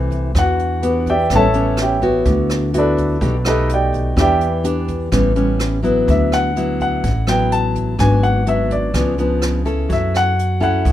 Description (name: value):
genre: bossa nova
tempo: 126 BPM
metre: 4/4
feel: straight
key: D major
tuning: A4 = 440 Hz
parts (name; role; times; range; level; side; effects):
- nylon-string guitar; accompaniment; 0.0-10.9 s; G#2 to A4; -19 LUFS; left 1 dB; none
- upright bass; bass; 0.0-10.9 s; G#1 to F#2; -20 LUFS; right 1 dB; none
- jazz brush drum kit; drums; 0.1-10.9 s; hi-hat, kick drum, rim click; -24 LUFS; equal; none
- warm grand piano; melody; 0.4-10.9 s; D4 to A5; -19 LUFS; equal; none
room: light reverb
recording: minimal, uncompressed stereo recording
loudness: -14 LUFS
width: side -12 dB against mid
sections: 0.0-6.1 A section; 6.1-10.9 B section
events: grand piano solo 0.0-6.1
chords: 0.3 Em7; 1.3 A9; 2.3 D69; 3.2 B7alt; 4.2 Em7; 5.1 A9; 6.1 D69; 8.0 G#m7b5; 8.9 C#7b9; 9.9 F#m7